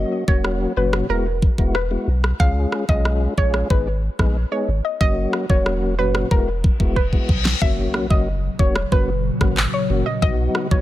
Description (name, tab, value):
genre	dancehall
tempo	92 BPM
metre	4/4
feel	straight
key	unclear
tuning	A4 = 444 Hz
part	tonewheel organ	accompaniment	0.0-10.8 s	A#2 to G#4	-25 LUFS	left 2 dB	fast rotary speaker, sidechain pumping
part	punchy sub bass	bass	0.0-10.8 s	E1 to C#2	-22 LUFS	equal	none
part	soft round pluck	melody	0.3-10.8 s	A#4 to E#5	-25 LUFS	equal	chorus, digital delay
part	pop drum kit	drums	0.3-10.8 s	handclaps, kick drum, rim click, snare drum	-19 LUFS	equal	none
part	reverse cymbal and impact	sound effects	6.9-10.2 s	none	-31 LUFS	left 2 dB	none
part	ethereal airy pad	sustained chords	8.3-10.8 s	A#2 to B3	-27 LUFS	equal	ensemble chorus, built-in reverb, sidechain pumping
room	little or no reverb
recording	none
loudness	-17 LUFS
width	side -14 dB against mid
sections	0.0-7.6 A section; 7.6-10.8 B section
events	reverse cymbal 6.9-7.6; drum fill 7.0-7.6; hi-hats muted 7.6-10.8; impact 7.6-10.2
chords	0.0 F#; 1.1 Eadd9; 2.4 C#; 3.7 G#m; 5.0 F#; 6.3 Eadd9; 7.6 F#; 10.2 B